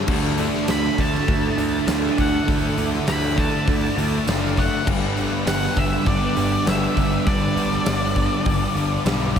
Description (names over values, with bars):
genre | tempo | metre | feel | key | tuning
rock, shoegaze and dream pop | 100 BPM | 4/4 | straight | D major | A4 = 440 Hz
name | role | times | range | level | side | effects
string machine, cellos | sustained chords | 0.0-9.4 s | A4 to D6 | -31 LUFS | equal | ensemble chorus
crunchy overdriven guitar | riff | 0.0-9.4 s | D3 to B4 | -27 LUFS | right 9 dB | reverse reverb
crunchy overdriven guitar | riff | 0.0-9.4 s | G2 to D4 | -27 LUFS | equal | lush chorus
thick fuzz guitar | riff | 0.0-9.4 s | G2 to D4 | -28 LUFS | left 7 dB | distortion, wide subtle chorus
growling picked electric bass | bass | 0.1-9.4 s | F#1 to D2 | -26 LUFS | equal | overdrive
huge arena drum kit | drums | 0.1-9.4 s | crash cymbal, hi-hat, kick drum, snare drum | -24 LUFS | equal | none
octave-fuzz lead guitar | melody | 0.7-9.0 s | D5 to B5 | -27 LUFS | left 1 dB | distortion, tape echo
tambourine | percussion | 0.7-9.2 s | none | -38 LUFS | right 7 dB | none
room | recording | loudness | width
moderate huge ambient reverb, RT60 7.9 s | dreamy mix soaked in reverb | -18 LUFS | side -8 dB against mid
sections
0.0-9.4 A section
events
none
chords
0.1 Dadd9; 4.9 Gmaj7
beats
| 0.09 0.69 1.28 1.88 | 2.48 3.08 3.68 4.28 | 4.87 5.47 6.07 6.67 | 7.27 7.87 8.46 9.06